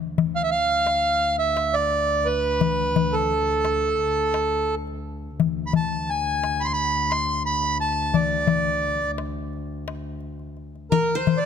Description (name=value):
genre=Arabic maqam ensemble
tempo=87 BPM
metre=4/4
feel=straight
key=D maqam nikriz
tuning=A4 = 438 Hz
part: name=warm double bass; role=drone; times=0.0-11.0 s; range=D2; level=-30 LUFS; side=left 2 dB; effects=none
part: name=darbuka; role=percussion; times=0.2-11.4 s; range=none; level=-24 LUFS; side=left 10 dB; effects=none
part: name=accordion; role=melody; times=0.4-11.5 s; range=A4 to C6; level=-22 LUFS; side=right 2 dB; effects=none
part: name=qanun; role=second line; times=10.9-11.5 s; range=Bb4 to C5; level=-28 LUFS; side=right 6 dB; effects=none
room=light reverb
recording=close, detailed microphones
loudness=-20 LUFS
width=side -7 dB against mid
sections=0.0-10.9 A section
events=none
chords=none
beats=0.53 1.22 1.92 | 2.61 3.30 3.99 4.69 | 5.38 6.07 6.76 7.45 | 8.15 8.84 9.53 10.22 | 10.91